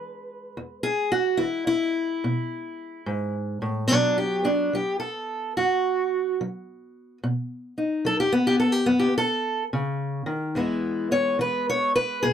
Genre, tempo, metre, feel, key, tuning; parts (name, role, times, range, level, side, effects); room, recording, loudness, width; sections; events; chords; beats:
acoustic country blues, solo or duo; 72 BPM; 4/4; swing 65% on 8ths; E mixolydian; A4 = 440 Hz
fingerpicked steel-string acoustic guitar; solo; 0.0-12.3 s; E2 to C#5; -22 LUFS; equal
moderate booth ambience, RT60 0.2 s; close, detailed microphones; -22 LUFS; side -9 dB against mid
0.0-12.3 A section
steel-string acoustic guitar solo 0.0-12.3
0.0 E7; 3.9 B; 10.6 E
| 0.56 1.40 2.23 3.06 | 3.89 4.73 5.56 6.39 | 7.23 8.06 8.89 9.73 | 10.56 11.40 12.23